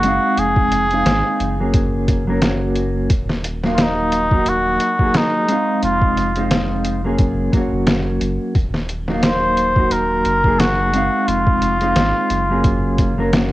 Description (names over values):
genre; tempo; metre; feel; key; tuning
trip hop; 88 BPM; 4/4; swing 56% on 16ths; Eb dorian; A4 = 440 Hz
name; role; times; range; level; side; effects
trumpet with cup mute; melody; 0.0-13.3 s; Eb4 to C5; -18 LUFS; equal; cassette tape, tape echo
mellow electric guitar; accompaniment; 0.0-13.5 s; Gb3 to F5; -20 LUFS; equal; tremolo, vintage 12-bit sampler grit, low-pass filter, cassette tape, tape echo
round analog bass; bass; 0.0-13.5 s; Eb1 to Ab1; -23 LUFS; equal; none
trip hop sampler-style drum kit; drums; 0.0-13.5 s; hi-hat, kick drum, snare drum; -18 LUFS; equal; cassette tape
room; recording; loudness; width
light reverb; home recording on cassette; -15 LUFS; side -16 dB against mid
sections
0.0-13.5 A section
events
none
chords
0.4 Dbmaj7/F (rootless); 1.7 Gb; 3.1 Ebmadd9; 5.8 Dbmaj7/F (rootless); 7.2 Gb; 8.6 Ebmadd9; 11.3 Dbmaj7/F (rootless); 12.6 Gb